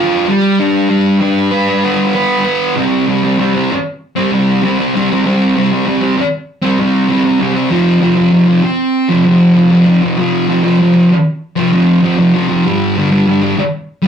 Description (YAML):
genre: rock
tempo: 97 BPM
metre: 4/4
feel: straight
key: unclear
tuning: A4 = 441 Hz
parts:
  - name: thick fuzz guitar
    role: solo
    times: 0.0-14.1 s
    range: F2 to B4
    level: -10 LUFS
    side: equal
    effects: distortion
room: wet small room reverb, RT60 0.5 s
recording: rough rehearsal-room recording, warm saturation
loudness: -10 LUFS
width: side -8 dB against mid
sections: 0.0-2.8 A section; 2.8-14.1 A section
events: none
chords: 0.3 G; 2.8 C5; 7.7 F5; 12.6 G5